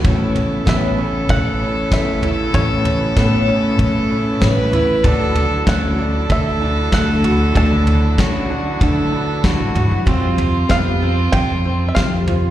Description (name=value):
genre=indie folk with a building arrangement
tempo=96 BPM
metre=4/4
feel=straight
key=A major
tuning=A4 = 440 Hz
part: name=warm fiddle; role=second line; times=0.0-12.5 s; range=F4 to B4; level=-23 LUFS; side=right 1 dB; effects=slapback echo
part: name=picked twelve-string acoustic guitar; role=accompaniment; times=0.0-12.5 s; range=A2 to C5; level=-25 LUFS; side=left 6 dB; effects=ensemble chorus, slapback echo
part: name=clear studio string section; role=sustained chords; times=0.0-12.5 s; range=C3 to F4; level=-29 LUFS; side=left 2 dB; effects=none
part: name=felt-muted upright piano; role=arpeggios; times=0.0-12.5 s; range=B3 to F#4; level=-24 LUFS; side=right 5 dB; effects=none
part: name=upright bass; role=bass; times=0.0-12.5 s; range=A1 to D3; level=-18 LUFS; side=equal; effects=none
part: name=soft brush drum kit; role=drums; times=0.0-12.4 s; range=kick drum, snare drum, toms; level=-19 LUFS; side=equal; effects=none
part: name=bluegrass banjo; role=melody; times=0.7-12.5 s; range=C#5 to A5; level=-25 LUFS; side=right 2 dB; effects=slapback echo
room=small room reverb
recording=live gig heard through the venue's PA, recital hall reverb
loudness=-14 LUFS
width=side -13 dB against mid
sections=0.0-12.5 A section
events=none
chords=0.0 Aadd9; 5.0 Dadd9; 10.1 Fsus2